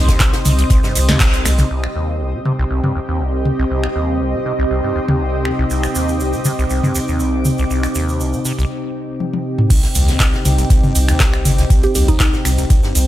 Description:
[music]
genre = acid house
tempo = 120 BPM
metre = 4/4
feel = straight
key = C minor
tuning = A4 = 438 Hz
[part]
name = lush unison pad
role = sustained chords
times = 0.0-13.1 s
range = C3 to C5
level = -23 LUFS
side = equal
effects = chorus, sidechain pumping
[part]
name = acid bass, saw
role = riff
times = 0.0-13.0 s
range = Bb1 to C3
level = -20 LUFS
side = equal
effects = tube saturation, analog chorus, sidechain pumping
[part]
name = warm sub bass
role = bass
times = 0.0-1.6, 10.0-13.1 s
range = G1 to C2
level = -15 LUFS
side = equal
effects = tube saturation, sidechain pumping
[part]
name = granular cloud pad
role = texture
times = 0.0-8.7 s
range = C4 to Eb6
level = -23 LUFS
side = right 1 dB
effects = built-in reverb, sidechain pumping
[part]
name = booming analog drum machine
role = drums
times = 0.1-13.1 s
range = crash cymbal, finger snaps, handclaps, hi-hat, ride cymbal, snare drum, toms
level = -19 LUFS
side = equal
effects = overdrive
[part]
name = electronic kick drum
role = drums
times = 0.1-1.3, 9.7-12.8 s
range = none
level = -14 LUFS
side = equal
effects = overdrive
[part]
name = natural country drum kit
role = drums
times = 0.1-1.7, 9.7-13.1 s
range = hi-hat, snare drum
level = -30 LUFS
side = left 2 dB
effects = high-pass filter on hats, high-pass filter on snare, high-pass filter on room
[part]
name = egg shaker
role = percussion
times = 0.1-1.7, 5.7-13.1 s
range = none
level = -28 LUFS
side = right 4 dB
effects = none
[part]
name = mallet-like synth pluck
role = melody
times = 11.8-12.3 s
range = Eb4 to G4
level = -22 LUFS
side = right 2 dB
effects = chorus, phaser, cassette tape, analog delay
[sound]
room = light reverb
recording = none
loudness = -14 LUFS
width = side -14 dB against mid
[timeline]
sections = 0.0-1.7 A section; 1.7-9.7 B section; 9.7-13.1 A section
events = drop 0.0-1.7, 9.7-13.1; band accent 1.2; drum fill 9.2-9.7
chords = 0.0 Cm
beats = 0.20 0.70 1.20 | 1.70 2.20 2.70 3.20 | 3.70 4.20 4.70 5.20 | 5.70 6.20 6.70 7.20 | 7.70 8.20 8.70 9.20 | 9.70 10.20 10.70 11.20 | 11.70 12.20 12.70

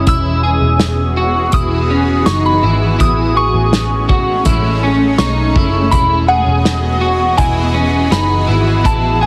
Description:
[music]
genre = dream pop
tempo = 82 BPM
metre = 4/4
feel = straight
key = E major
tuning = A4 = 441 Hz
[part]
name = soft synth bell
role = melody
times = 0.0-9.3 s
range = F#5 to E6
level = -21 LUFS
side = equal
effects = chorus, phaser, tape echo
[part]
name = shimmering ambient pad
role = sustained chords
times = 0.0-9.3 s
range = E3 to D#5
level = -21 LUFS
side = equal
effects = chorus, built-in reverb
[part]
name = electric guitar at the edge of break-up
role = arpeggios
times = 0.0-9.3 s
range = C#4 to G#4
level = -20 LUFS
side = equal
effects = analog chorus, tape echo
[part]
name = vintage muted picked electric bass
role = bass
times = 0.0-9.3 s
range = E1 to B1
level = -19 LUFS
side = equal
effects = none
[part]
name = loose indie drum kit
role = drums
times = 0.1-9.0 s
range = hi-hat, kick drum, snare drum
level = -18 LUFS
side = equal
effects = none
[sound]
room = moderate echo chamber reverb, RT60 1.9 s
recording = heavily compressed radio sound, multiband compression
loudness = -13 LUFS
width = mono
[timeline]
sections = 0.0-9.3 A section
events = none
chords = 0.1 Emaj9; 3.0 Amaj7; 5.9 Emaj9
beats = | 0.07 0.80 1.53 2.27 | 3.00 3.73 4.46 5.19 | 5.92 6.66 7.39 8.12 | 8.85

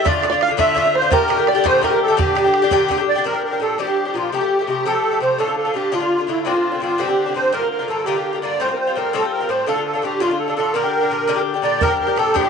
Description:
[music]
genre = celtic folk, Celtic jig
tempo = 112 BPM (dotted quarters)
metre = 6/8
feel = straight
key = G dorian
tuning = A4 = 440 Hz
[part]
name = musette accordion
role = melody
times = 0.0-12.5 s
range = E4 to F5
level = -18 LUFS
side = right 3 dB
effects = none
[part]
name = bluegrass banjo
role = second line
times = 0.0-3.0 s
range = G4 to F5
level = -25 LUFS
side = right 10 dB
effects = none
[part]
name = Irish bouzouki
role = accompaniment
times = 0.0-12.5 s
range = G2 to G4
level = -20 LUFS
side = left 9 dB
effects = none
[part]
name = bodhran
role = percussion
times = 0.1-2.9, 11.8-12.4 s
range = none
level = -24 LUFS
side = right 3 dB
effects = none
[sound]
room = moderate echo chamber reverb, RT60 2.2 s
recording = 1960s-style stereo with parts hard left and right, nothing above 10.8 kHz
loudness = -16 LUFS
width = side -6 dB against mid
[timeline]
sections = 0.0-3.3 A section; 3.3-11.8 B section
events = none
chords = 0.1 Dm; 1.1 Gmadd9; 2.2 Gm; 3.3 Gm7; 4.3 Fadd9; 5.4 Dm; 6.5 Csus2; 7.5 Gm7; 8.6 Fadd9; 9.7 Dm; 10.7 Gm; 11.8 Gm7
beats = | 0.06 0.59 | 1.12 1.65 | 2.19 2.72 | 3.25 3.79 | 4.32 4.86 | 5.39 5.93 | 6.46 7.00 | 7.53 8.07 | 8.60 9.14 | 9.67 10.21 | 10.74 11.28 | 11.81 12.35

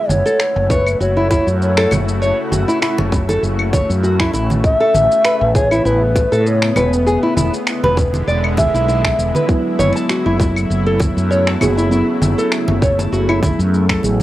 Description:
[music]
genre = organic downtempo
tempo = 99 BPM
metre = 4/4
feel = swing 54% on 16ths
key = F# minor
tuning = A4 = 441 Hz
[part]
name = mellow bass bansuri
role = melody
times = 0.0-9.4 s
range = B4 to E5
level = -19 LUFS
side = equal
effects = cassette tape, analog delay, plate reverb
[part]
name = bowed-like drone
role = sustained chords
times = 0.0-14.2 s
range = C#3 to F#4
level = -23 LUFS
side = left 1 dB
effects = built-in reverb, sidechain pumping, cassette tape
[part]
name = mellow fretless electric bass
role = bass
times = 0.1-14.2 s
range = E1 to A2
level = -18 LUFS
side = equal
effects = sidechain pumping
[part]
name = electronic shaker, finger snaps and claves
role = drums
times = 0.1-14.2 s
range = none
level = -23 LUFS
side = left 1 dB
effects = overdrive, cassette tape
[part]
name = congas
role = percussion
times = 0.1-14.2 s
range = none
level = -22 LUFS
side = right 2 dB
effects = none
[part]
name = nylon-string guitar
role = arpeggios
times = 0.3-14.0 s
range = E4 to A5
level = -19 LUFS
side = equal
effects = cassette tape, tape echo, plate reverb
[part]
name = electronic kick drum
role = drums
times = 0.7-14.0 s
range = none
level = -17 LUFS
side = equal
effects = cassette tape
[part]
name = muted felt-like synth keys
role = accompaniment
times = 9.5-14.2 s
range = F#3 to G#4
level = -20 LUFS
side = right 2 dB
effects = chorus, sidechain pumping, cassette tape, tape echo
[sound]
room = moderate studio reverb, RT60 0.6 s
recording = home recording on cassette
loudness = -13 LUFS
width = side -15 dB against mid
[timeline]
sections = 0.0-14.2 A section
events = none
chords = 0.0 F#m7; 4.6 Aadd9; 7.1 E7; 9.5 F#m7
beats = 0.40 1.00 1.61 | 2.22 2.82 3.43 4.04 | 4.64 5.25 5.85 6.46 | 7.07 7.67 8.28 8.88 | 9.49 10.10 10.70 11.31 | 11.91 12.52 13.13 13.73

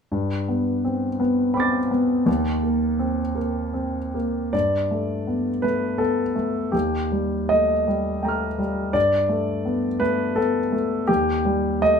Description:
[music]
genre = neoclassical minimalist piano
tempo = 83 BPM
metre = 3/4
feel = rubato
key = unclear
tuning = A4 = 441 Hz
[part]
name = warm grand piano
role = solo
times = 0.1-12.0 s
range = Eb2 to A6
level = -20 LUFS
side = equal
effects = none
[sound]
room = moderate studio reverb, RT60 0.7 s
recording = band playing live in one room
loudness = -20 LUFS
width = side -6 dB against mid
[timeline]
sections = 0.1-4.5 A section; 4.5-12.0 B section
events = none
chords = 0.1 Gadd9; 2.3 Eb5; 4.5 Gadd9; 6.7 Ebadd9; 8.9 Gadd9; 11.1 Eb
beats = | 0.11 0.85 1.56 | 2.27 2.99 3.74 | 4.53 5.28 6.00 | 6.74 7.50 8.24 | 8.95 9.66 10.37 | 11.08 11.83

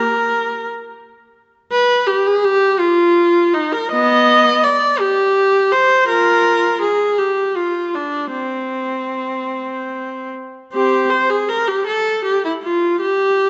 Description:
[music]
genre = classical, baroque-style suite movement for unaccompanied viola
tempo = 50-57 BPM (dotted quarters)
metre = 6/8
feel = rubato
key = C minor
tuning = A4 = 438 Hz
[part]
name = warm viola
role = solo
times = 0.0-13.5 s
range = B3 to Eb5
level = -16 LUFS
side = equal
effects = none
[sound]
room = moderate scoring stage reverb, RT60 2.1 s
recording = nothing above 8.0 kHz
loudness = -16 LUFS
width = mono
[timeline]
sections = 0.0-10.7 A section; 10.7-13.5 B section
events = none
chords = none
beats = 0.68 | 1.73 2.80 | 3.92 5.01 | 6.09 7.19 | 8.34 9.54 | 10.73 11.87 | 13.02

